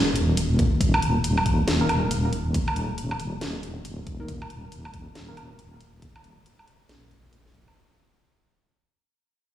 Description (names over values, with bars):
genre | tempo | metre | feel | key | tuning
deep dubstep | 138 BPM | 4/4 | swing 62% on 16ths, half-time | unclear | A4 = 440 Hz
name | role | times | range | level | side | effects
deep soft wobble bass | bass | 0.0-7.7 s | Eb1 to Bb1 | -25 LUFS | equal | chorus, tube saturation
garage drum kit | drums | 0.2-7.7 s | hi-hat, snare drum, woodblock | -27 LUFS | equal | none
electronic kick drum | drums | 0.6-7.7 s | none | -25 LUFS | equal | overdrive
barky tine electric piano | stabs | 1.8-5.3 s | Eb3 to Bb4 | -32 LUFS | left 1 dB | phaser, low-pass filter, dub echo
room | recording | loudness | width
moderate lush hall reverb, RT60 2.5 s | played on a big sound system in a bare room, stone room reverb, studio reverb | -21 LUFS | side -12 dB against mid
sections
0.0-7.8 A section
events
fade-out 0.0-7.8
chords
0.0 Eb5